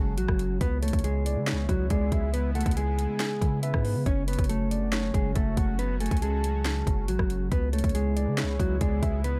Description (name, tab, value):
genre	hip hop, trap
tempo	139 BPM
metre	4/4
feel	half-time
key	F# minor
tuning	A4 = 440 Hz
part	mellow electric guitar	melody	0.0-9.4 s	F#3 to C#5	-33 LUFS	equal	tape echo
part	soft octave-layered synth lead	second line	0.0-9.2 s	B4 to A5	-40 LUFS	equal	chorus, tape echo
part	sweeping resonant pad	sustained chords	0.0-9.4 s	C#3 to F#4	-40 LUFS	equal	chorus
part	long sustained 808-style bass	bass	0.0-9.4 s	F#1 to C#3	-31 LUFS	equal	none
part	trap drum kit	drums	0.2-9.3 s	hi-hat, kick drum, rim click, snare drum	-31 LUFS	equal	none
room	digital ambience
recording	dark, warm production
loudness	-27 LUFS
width	mono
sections	0.0-9.4 A section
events	none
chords	0.0 F#madd9; 0.6 C#m7; 4.1 F#madd9; 7.5 C#m7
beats	0.18 | 0.61 1.04 1.47 1.90 | 2.34 2.77 3.20 3.63 | 4.06 4.49 4.93 5.36 | 5.79 6.22 6.65 7.08 | 7.51 7.95 8.38 8.81 | 9.24